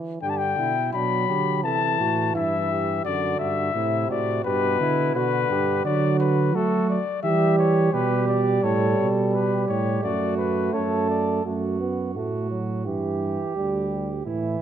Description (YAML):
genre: classical, imitative canzona for brass ensemble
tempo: 86 BPM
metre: 4/4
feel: straight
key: G major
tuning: A4 = 441 Hz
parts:
  - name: clear euphonium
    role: accompaniment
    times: 0.0-14.6 s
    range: B2 to B3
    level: -27 LUFS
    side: right 2 dB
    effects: none
  - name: dark trumpet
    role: melody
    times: 0.2-11.4 s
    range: A4 to B5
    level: -25 LUFS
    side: left 9 dB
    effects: none
  - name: mellow flugelhorn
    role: second line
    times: 0.2-14.6 s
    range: D4 to A4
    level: -28 LUFS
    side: right 6 dB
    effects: none
  - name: mellow tuba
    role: bass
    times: 0.2-14.6 s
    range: D2 to F#3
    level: -26 LUFS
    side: right 2 dB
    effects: none
room: moderate concert hall reverb, RT60 1.9 s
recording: close, detailed microphones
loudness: -21 LUFS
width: side -9 dB against mid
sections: 0.2-11.4 A section; 11.4-14.6 B section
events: none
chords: 0.2 G; 1.6 Am; 3.1 D/F#; 4.5 G; 5.8 D; 7.2 Em; 8.6 A; 10.0 D/F#; 11.4 F#madd11; 12.9 Em/G